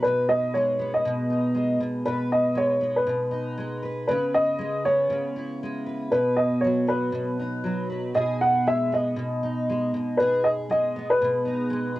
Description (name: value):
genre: pop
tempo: 118 BPM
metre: 4/4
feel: swing 55% on 16ths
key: unclear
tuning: A4 = 440 Hz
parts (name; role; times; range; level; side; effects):
- dark upright piano; melody; 0.0-11.9 s; B4 to F#5; -23 LUFS; equal; cassette tape
- picked steel-string acoustic guitar; accompaniment; 0.0-12.0 s; B2 to B4; -27 LUFS; equal; double-tracked left and right
room: wet booth ambience, RT60 0.2 s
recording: home recording on cassette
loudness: -22 LUFS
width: side -17 dB against mid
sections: 0.0-12.0 A section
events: none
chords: 0.0 G#m/B; 4.1 C#m7; 6.1 B; 8.2 G#m/B